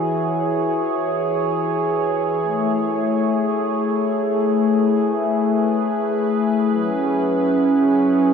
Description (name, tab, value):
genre	ambient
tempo	free time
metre	none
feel	none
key	unclear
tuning	A4 = 439 Hz
part	warm analog pad	solo	0.0-8.3 s	E3 to C#5	-17 LUFS	equal	chorus, tape echo
room	wet spring reverb, RT60 2.3 s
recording	echo-heavy mix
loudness	-17 LUFS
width	side -6 dB against mid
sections	0.0-8.3 A section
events	none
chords	0.0 E69; 2.4 Amaj9; 6.7 F#9sus4